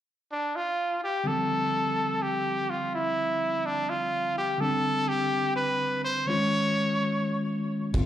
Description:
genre	electric jazz fusion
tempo	free time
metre	none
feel	none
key	unclear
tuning	A4 = 439 Hz
part	brilliant trumpet	melody	0.3-7.5 s	D4 to Db5	-27 LUFS	equal	slapback echo, tape echo
part	bell-like tine electric piano	accompaniment	1.2-8.1 s	D3 to F4	-30 LUFS	equal	fast stereo tremolo, slapback echo
part	upright bass	bass	7.9-8.1 s	G1	-26 LUFS	equal	none
part	tight funk drum kit	drums	7.9-8.1 s	crash cymbal, kick drum	-26 LUFS	equal	none
room	light reverb, small room ambience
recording	live gig heard through the venue's PA, club reverb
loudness	-25 LUFS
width	side -11 dB against mid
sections	0.0-1.3 A section; 1.3-7.9 B section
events	none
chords	0.0 N.C.; 1.3 G9sus4; 6.3 Absus4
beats	free time

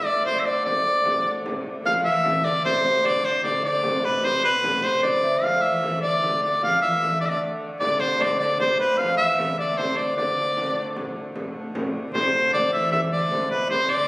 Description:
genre	medieval dance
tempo	101 BPM (dotted quarters)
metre	6/8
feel	straight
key	D dorian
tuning	A4 = 440 Hz
part	bright shawm	melody	0.0-14.1 s	B4 to F5	-21 LUFS	equal	none
part	Celtic harp	second line	0.0-14.1 s	B4 to F5	-28 LUFS	equal	none
part	rich hurdy-gurdy	drone	0.0-14.1 s	D3 to A3	-33 LUFS	equal	none
part	frame drum	percussion	0.3-14.0 s	none	-32 LUFS	equal	none
part	rich viola da gamba	second line	1.8-14.1 s	B2 to F3	-32 LUFS	equal	none
room	wet concert hall reverb, RT60 1.8 s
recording	recorded on a phone in the room, club reverb, compression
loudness	-20 LUFS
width	side -22 dB against mid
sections	0.0-1.8 A section; 1.8-11.4 A section; 11.4-14.1 B section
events	none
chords	none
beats	0.04 | 0.65 1.25 | 1.85 2.44 | 3.04 3.64 | 4.24 4.83 | 5.43 6.03 | 6.62 7.21 | 7.81 8.40 | 8.99 9.58 | 10.17 10.76 | 11.35 11.94 | 12.53 13.12 | 13.70

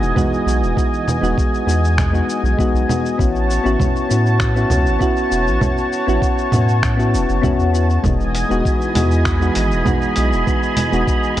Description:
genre	sunset chillout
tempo	99 BPM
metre	4/4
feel	straight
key	E major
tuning	A4 = 440 Hz
part	soft electric-piano-like synth keys	accompaniment	0.0-11.4 s	G#3 to F#4	-20 LUFS	moving between left 4 dB and right 3 dB	chorus, auto-pan, tape echo
part	lush unison pad	sustained chords	0.0-11.4 s	E3 to A5	-22 LUFS	equal	chorus
part	round analog bass	bass	0.0-11.4 s	E1 to A2	-18 LUFS	equal	none
part	dusty soul sampler-style drum kit	drums	0.0-11.4 s	congas, finger snaps, hi-hat, shaker	-24 LUFS	right 1 dB	none
part	electronic kick drum	drums	0.2-11.2 s	none	-20 LUFS	equal	none
part	wind-like tuned noise texture	texture	8.7-11.4 s	B5	-28 LUFS	right 3 dB	built-in reverb
room	light reverb, digital ambience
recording	worn, warbling old tape, cassette tape, warbly pitch drift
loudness	-14 LUFS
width	side -13 dB against mid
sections	0.0-11.4 A section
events	none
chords	0.0 Emaj7; 3.2 A6; 8.0 Emaj7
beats	0.17 | 0.77 1.38 1.98 2.59 | 3.19 3.80 4.41 5.01 | 5.62 6.23 6.83 7.44 | 8.04 8.65 9.26 9.86 | 10.47 11.07

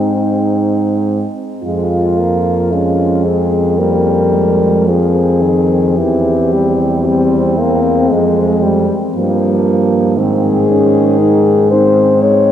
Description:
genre	classical, lyrical piece for horn quartet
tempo	50-59 BPM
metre	4/4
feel	rubato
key	F minor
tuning	A4 = 439 Hz
part	mellow French horn	melody	0.0-12.5 s	C4 to Db5	-16 LUFS	left 6 dB	none
part	mellow French horn	second line	0.0-12.5 s	Ab3 to F4	-17 LUFS	right 4 dB	none
part	warm French horn	accompaniment	0.0-12.5 s	Eb3 to C4	-17 LUFS	equal	none
part	mellow French horn	bass	0.0-12.5 s	E2 to Ab2	-16 LUFS	right 2 dB	none
room	wet cathedral reverb, RT60 5.2 s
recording	dark, warm production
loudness	-10 LUFS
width	side -10 dB against mid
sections	0.0-1.6 A section; 1.6-12.5 B section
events	none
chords	0.0 Ab; 1.6 Fm; 6.0 C/E; 8.1 Fm; 10.2 Ab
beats	0.47 | 1.64 2.73 3.78 4.88 | 5.98 7.05 8.10 9.14 | 10.17 11.20 12.23

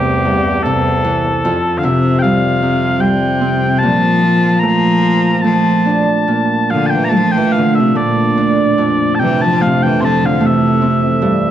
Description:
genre	celtic folk, Celtic slow air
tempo	74 BPM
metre	3/4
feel	rubato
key	unclear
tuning	A4 = 440 Hz
part	mellow small bagpipes	melody	0.0-11.5 s	G4 to C6	-17 LUFS	left 1 dB	none
part	bright cello	second line	0.0-11.2 s	E2 to G3	-17 LUFS	left 3 dB	none
part	Celtic harp	accompaniment	0.0-11.5 s	C2 to D4	-15 LUFS	right 3 dB	none
part	deep dark ambient pad	sustained chords	7.2-11.5 s	F2 to Bb4	-19 LUFS	right 1 dB	chorus, built-in reverb
room	moderate recital hall reverb, RT60 1.4 s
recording	dark, warm production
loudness	-11 LUFS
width	side -10 dB against mid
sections	0.0-11.5 A section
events	none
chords	0.0 C; 1.4 Fsus2; 3.8 Bbmaj7; 8.8 Fmaj7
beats	0.64 | 1.43 2.22 3.01 | 3.81 4.62 5.43 | 6.28 7.12 7.96 | 8.78 9.61 10.41 | 11.22

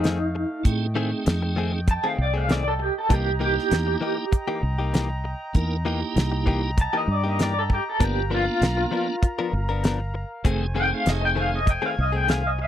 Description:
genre	straight-eighth soul blues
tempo	98 BPM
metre	4/4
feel	straight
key	unclear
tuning	A4 = 441 Hz
part	electric guitar through a small old amp	melody	0.0-12.7 s	Eb4 to A5	-25 LUFS	equal	tremolo
part	mellow horn section	sustained chords	0.0-12.7 s	A3 to Bb5	-35 LUFS	equal	none
part	direct-recorded clean electric guitar	stabs	0.0-12.6 s	Eb3 to A#4	-29 LUFS	left 6 dB	none
part	fingered electric bass	bass	0.0-12.7 s	F1 to A2	-25 LUFS	equal	none
part	damped 70s drum kit	drums	0.0-12.4 s	hi-hat, kick drum, snare drum	-21 LUFS	equal	none
part	tonewheel organ	accompaniment	0.6-11.6 s	A3 to Bb4	-29 LUFS	right 4 dB	slow rotary speaker, overdrive, chorus vibrato
room	little or no reverb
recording	dry, close 1970s-style studio recording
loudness	-21 LUFS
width	side -11 dB against mid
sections	0.0-12.7 A section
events	none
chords	0.0 F7#9; 3.1 C7#9; 8.0 G7#9; 10.4 F7#9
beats	0.04 | 0.66 1.27 1.88 2.49 | 3.10 3.72 4.33 4.94 | 5.55 6.16 6.78 7.39 | 8.00 8.61 9.22 9.84 | 10.45 11.06 11.67 12.28

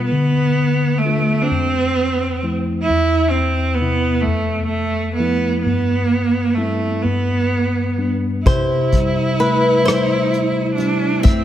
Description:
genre	acoustic folk-pop ballad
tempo	43 BPM (dotted quarters)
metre	6/8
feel	straight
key	C major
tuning	A4 = 438 Hz
part	bright cello	second line	0.0-11.4 s	A3 to E4	-19 LUFS	right 3 dB	none
part	mellow tine electric piano	accompaniment	0.0-11.4 s	E2 to F4	-20 LUFS	left 2 dB	none
part	flamenco guitar	melody	8.5-11.4 s	B4 to E5	-19 LUFS	left 1 dB	none
part	picked steel-string acoustic guitar	arpeggios	8.5-11.4 s	E4 to G4	-29 LUFS	right 5 dB	none
part	vintage brush drum kit	drums	8.5-11.4 s	hi-hat, kick drum, rim click	-16 LUFS	left 1 dB	none
room	moderate concert hall reverb, RT60 2.3 s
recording	none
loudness	-15 LUFS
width	side -11 dB against mid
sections	0.0-8.4 A section; 8.4-11.4 B section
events	cello solo 0.0-8.4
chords	0.1 Dm; 1.5 Fmaj7; 2.9 Cmaj7/E; 4.3 Fmaj7; 5.7 C/G; 7.0 G; 8.4 C6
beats	| 0.11 1.50 | 2.88 4.27 | 5.66 7.05 | 8.45 9.85 | 11.24

